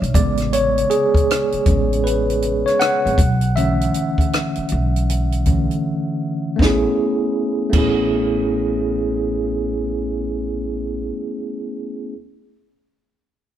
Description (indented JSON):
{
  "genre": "R&B, neo-soul",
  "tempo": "79 BPM",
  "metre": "4/4",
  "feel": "swing 63% on 16ths",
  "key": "A major",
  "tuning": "A4 = 441 Hz",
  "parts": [
    { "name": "tine electric piano", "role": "accompaniment", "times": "0.0-12.2 s", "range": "C#3 to F#5", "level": "-19 LUFS", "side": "equal", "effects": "fast stereo tremolo" },
    { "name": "upright bass", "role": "bass", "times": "0.0-11.1 s", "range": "G#1 to B1", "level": "-22 LUFS", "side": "equal", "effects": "none" },
    { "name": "compact cocktail drum kit", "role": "drums", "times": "0.0-8.0 s", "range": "crash cymbal, hi-hat, kick drum, rim click, snare drum", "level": "-20 LUFS", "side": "equal", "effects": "none" }
  ],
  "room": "moderate stone room reverb, RT60 1.4 s",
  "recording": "band playing live in one room",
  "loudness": "-17 LUFS",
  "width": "side -11 dB against mid",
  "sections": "0.0-6.6 A section; 6.6-9.6 B section",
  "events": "tine electric piano solo 0.0-6.6; break 5.8-6.6",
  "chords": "0.1 Amaj9; 3.2 Bm11; 6.6 Amaj9"
}